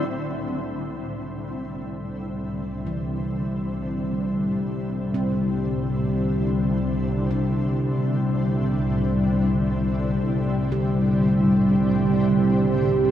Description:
ambient; free time; C major; A4 = 440 Hz
shimmering ambient pad; sustained chords; 0.0-13.1 s; A2 to E4; -27 LUFS; equal; chorus, built-in reverb
warm studio double bass section; bass; 0.1-13.1 s; C2; -33 LUFS; equal
analog drone; drone; 1.5-13.1 s; C3 to G3; -22 LUFS; equal; chorus
handpan; arpeggios; 0.5-13.1 s; E3 to G4; -37 LUFS; right 1 dB
wet huge ambient reverb, RT60 8.6 s; dreamy mix soaked in reverb; -21 LUFS; side -11 dB against mid
0.1-13.1 A section
fade-in on ambient pad 0.1-13.1; fade-in on double bass section 0.1-13.1
0.1 C
free time

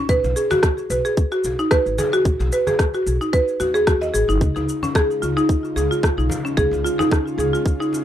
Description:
organic downtempo; 111 BPM; 4/4; swing 54% on 16ths; A4 = 444 Hz
buzzing marimba with medium hard mallets; arpeggios; 0.0-8.0 s; Db4 to D#5; -19 LUFS; equal; ping-pong delay, plate reverb
upright bass; bass; 0.0-7.5 s; F#1 to D#2; -24 LUFS; equal; sidechain pumping
electronic kick drum; drums; 0.1-7.8 s; -19 LUFS; equal
electronic shaker and rim click; drums; 0.1-8.0 s; -25 LUFS; equal
cajon; percussion; 0.2-8.0 s; -33 LUFS; left 2 dB
airy breathy pad; sustained chords; 4.4-8.0 s; Db3 to F4; -29 LUFS; equal; chorus, sidechain pumping, plate reverb
light reverb; rough home demo mix; -17 LUFS; side -11 dB against mid
0.0-8.0 A section
0.1 B6; 4.4 Dbadd9
| 0.09 0.63 1.17 1.71 | 2.25 2.79 3.33 3.87 | 4.41 4.95 5.50 6.04 | 6.58 7.12 7.66

